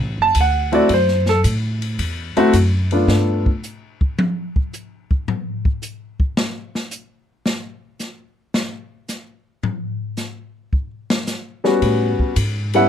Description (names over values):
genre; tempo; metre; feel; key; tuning
jazz, small-group swing and bop; 110 BPM; 4/4; swing 69% on 8ths; unclear; A4 = 440 Hz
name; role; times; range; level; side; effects
upright bass; bass; 0.0-3.4, 11.8-12.9 s; F#1 to A2; -19 LUFS; equal; none
warm grand piano; accompaniment; 0.2-3.5, 11.6-12.9 s; G3 to A5; -16 LUFS; left 1 dB; none
open jazz drum kit; drums; 0.3-12.8 s; hi-hat, kick drum, ride cymbal, snare drum, toms; -22 LUFS; left 1 dB; none
room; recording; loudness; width
little or no reverb; close, detailed microphones; -17 LUFS; side -9 dB against mid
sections
0.0-12.9 A section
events
drum solo 3.1-11.8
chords
0.0 D7; 3.1 G7; 5.3 Gmaj7#11; 11.8 A7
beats
0.35 | 0.90 1.44 1.99 2.54 | 3.08 3.63 4.18 4.72 | 5.27 5.82 6.36 6.91 | 7.45 8.00 8.54 9.09 | 9.64 10.18 10.73 11.27 | 11.82 12.36